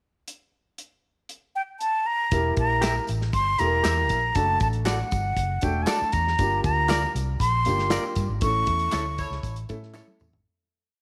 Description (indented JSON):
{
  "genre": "uptempo 1960s-style soul",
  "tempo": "118 BPM",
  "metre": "4/4",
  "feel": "straight",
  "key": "unclear",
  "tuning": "A4 = 440 Hz",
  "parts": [
    { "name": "warm soul drum kit", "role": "drums", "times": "0.3-10.5 s", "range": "hi-hat, kick drum, snare drum, toms", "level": "-32 LUFS", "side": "equal", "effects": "none" },
    { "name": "breathy concert flute", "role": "melody", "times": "1.6-9.4 s", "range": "F#5 to C#6", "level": "-27 LUFS", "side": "equal", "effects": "none" },
    { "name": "warm concert grand piano", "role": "accompaniment", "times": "2.3-10.2 s", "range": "A3 to Bb4", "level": "-33 LUFS", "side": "equal", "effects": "none" },
    { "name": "vintage muted fingered electric bass", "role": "bass", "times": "2.3-10.4 s", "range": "E1 to A2", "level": "-30 LUFS", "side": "equal", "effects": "none" },
    { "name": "tambourine and handclaps", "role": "percussion", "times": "2.3-10.3 s", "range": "none", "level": "-41 LUFS", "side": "equal", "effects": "none" },
    { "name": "semi-hollow electric guitar", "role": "stabs", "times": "2.8-10.1 s", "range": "E4 to E5", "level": "-34 LUFS", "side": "equal", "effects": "none" },
    { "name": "warm horn section", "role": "second line", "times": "9.2-9.6 s", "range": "E4 to C#5", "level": "-40 LUFS", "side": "equal", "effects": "none" }
  ],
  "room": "light reverb, small room reverb",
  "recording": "none",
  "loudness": "-24 LUFS",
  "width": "mono",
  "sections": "0.3-2.3 pickup bar; 2.3-10.5 pre-chorus",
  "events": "fade-out 8.4-10.5; band accent 8.4-10.5; drum fill 9.9-10.5",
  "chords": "0.3 N.C.; 2.3 Edim; 4.4 D/F#; 6.4 Gm7; 8.4 A",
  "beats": "| 0.28 0.79 1.30 1.81 | 2.32 2.83 3.34 3.85 | 4.36 4.87 5.38 5.88 | 6.39 6.90 7.41 7.92 | 8.42 8.93 9.44 9.95"
}